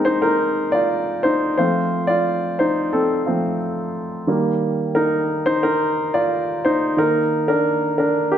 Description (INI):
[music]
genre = pop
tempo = 89 BPM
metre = 4/4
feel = straight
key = unclear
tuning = A4 = 437 Hz
[part]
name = warm grand piano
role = solo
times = 0.0-8.4 s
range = Eb3 to D5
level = -17 LUFS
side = equal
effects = none
[sound]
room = moderate large studio reverb, RT60 1.2 s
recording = none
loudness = -17 LUFS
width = side -9 dB against mid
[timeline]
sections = 0.0-8.4 A section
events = grand piano solo 0.0-8.4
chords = 0.0 Ab; 1.6 F; 4.3 Ebadd9; 7.0 Ebmaj7(no3)